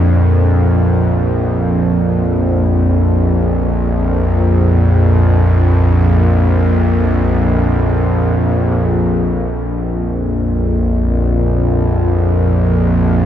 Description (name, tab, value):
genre	ambient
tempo	free time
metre	none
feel	none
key	unclear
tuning	A4 = 440 Hz
part	bowed-like drone	solo	0.0-13.3 s	Bb1 to F2	-11 LUFS	equal	built-in reverb, diffuse ambient delay
room	wet huge ambient reverb, RT60 7.4 s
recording	dark, warm production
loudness	-12 LUFS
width	side -10 dB against mid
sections	0.0-8.9 A section; 8.9-13.3 B section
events	none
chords	0.0 Bb5